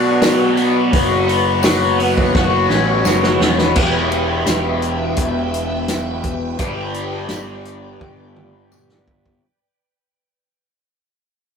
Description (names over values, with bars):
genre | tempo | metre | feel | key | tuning
psychedelic rock | 85 BPM | 4/4 | straight | E dorian | A4 = 440 Hz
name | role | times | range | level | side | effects
phased string machine | sustained chords | 0.0-9.4 s | B4 to G5 | -24 LUFS | right 2 dB | ensemble chorus, phaser
raw garage guitar | riff | 0.0-9.4 s | E3 to B4 | -19 LUFS | left 3 dB | overdrive, phaser
fuzz picked electric bass | bass | 0.0-9.4 s | E1 to B2 | -20 LUFS | right 1 dB | overdrive
vintage drum kit | drums | 0.2-9.4 s | crash cymbal, hi-hat, kick drum, snare drum, toms | -20 LUFS | equal | none
tambourine | percussion | 0.2-8.9 s | none | -30 LUFS | left 7 dB | none
room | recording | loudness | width
moderate small room reverb, RT60 0.5 s | rough rehearsal-room recording | -14 LUFS | side -6 dB against mid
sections
0.0-3.8 A section; 3.8-9.4 B section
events
drum fill 2.3-3.8, 8.0-9.4; fade-out 3.8-9.4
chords
0.0 Bm; 0.9 F#sus4; 3.8 Em; 6.6 G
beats
0.23 | 0.93 1.64 2.35 3.05 | 3.76 4.47 5.17 5.88 | 6.59 7.30 8.01 8.72